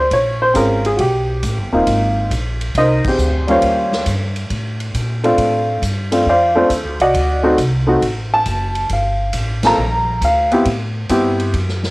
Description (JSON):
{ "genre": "jazz piano trio", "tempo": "136 BPM", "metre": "4/4", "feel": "swing 68% on 8ths", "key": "unclear", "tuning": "A4 = 437 Hz", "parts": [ { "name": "warm upright piano", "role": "melody", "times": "0.0-11.5 s", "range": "G3 to Bb5", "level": "-15 LUFS", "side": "equal", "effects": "none" }, { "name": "upright bass", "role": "bass", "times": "0.0-11.9 s", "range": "Eb1 to Bb2", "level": "-20 LUFS", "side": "equal", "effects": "none" }, { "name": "swinging big-band drum kit", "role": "drums", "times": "0.1-11.9 s", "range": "crash cymbal, hi-hat, kick drum, ride cymbal, snare drum", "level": "-26 LUFS", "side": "equal", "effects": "cassette tape" } ], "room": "light reverb, small room ambience", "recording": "home recording on cassette", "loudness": "-14 LUFS", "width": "side -22 dB against mid", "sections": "0.0-11.9 A section", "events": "band accent 3.0, 9.6", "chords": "0.1 Bbm9; 1.0 Eb; 1.9 Abmaj9; 3.6 Eb13; 5.4 Dm7; 7.1 D7b9; 8.9 Gm9; 10.7 Am7" }